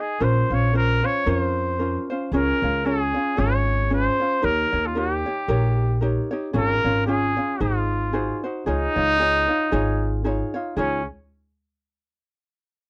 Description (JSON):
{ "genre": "Hawaiian", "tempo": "114 BPM", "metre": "4/4", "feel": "swing 56% on 8ths", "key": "Db major", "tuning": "A4 = 440 Hz", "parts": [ { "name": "warm trumpet", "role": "melody", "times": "0.0-11.1 s", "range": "Db4 to Db5", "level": "-26 LUFS", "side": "equal", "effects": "none" }, { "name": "ukulele", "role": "accompaniment", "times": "0.0-11.0 s", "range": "Db4 to Eb5", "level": "-28 LUFS", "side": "equal", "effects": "none" }, { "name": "upright bass", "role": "bass", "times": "0.2-11.0 s", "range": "Ab1 to F2", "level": "-27 LUFS", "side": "equal", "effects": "none" } ], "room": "little or no reverb", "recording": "dry, close 1970s-style studio recording", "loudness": "-22 LUFS", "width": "mono", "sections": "0.0-10.8 A section; 10.8-12.9 B section", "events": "none", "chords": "0.2 Bbmadd9; 2.3 Db; 4.4 Eb7; 6.5 Db/Ab; 7.6 Ab7; 8.7 Dbadd9" }